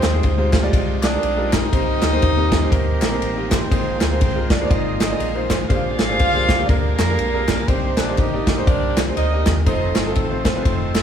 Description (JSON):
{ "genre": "uptempo gospel", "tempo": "121 BPM", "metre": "4/4", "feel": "swing 60% on 8ths", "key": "unclear", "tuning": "A4 = 440 Hz", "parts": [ { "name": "mellow horn section", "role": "melody", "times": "0.0-11.0 s", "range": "Bb3 to F5", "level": "-23 LUFS", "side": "right 1 dB", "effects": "none" }, { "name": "clear concert grand piano", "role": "accompaniment", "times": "0.0-11.0 s", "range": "Bb2 to Eb5", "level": "-25 LUFS", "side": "right 1 dB", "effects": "none" }, { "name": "bright tonewheel organ", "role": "sustained chords", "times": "0.0-11.0 s", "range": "Db3 to G5", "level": "-31 LUFS", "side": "equal", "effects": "none" }, { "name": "fingered electric bass", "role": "bass", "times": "0.0-11.0 s", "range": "F1 to F2", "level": "-23 LUFS", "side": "equal", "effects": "none" }, { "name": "modern studio drum kit", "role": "drums", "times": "0.0-11.0 s", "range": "kick drum, ride cymbal, snare drum", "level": "-20 LUFS", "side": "equal", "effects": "none" }, { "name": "group handclap", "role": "percussion", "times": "0.0-11.0 s", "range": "none", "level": "-34 LUFS", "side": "left 3 dB", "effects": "none" } ], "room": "moderate stone room reverb, RT60 1.1 s", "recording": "band playing live in one room", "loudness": "-16 LUFS", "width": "side -8 dB against mid", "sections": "0.0-11.0 A section", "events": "none", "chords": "0.0 Fm9; 1.7 Cm7; 3.7 Bb9sus4; 5.7 Bb13; 7.7 Cm9; 9.7 F7" }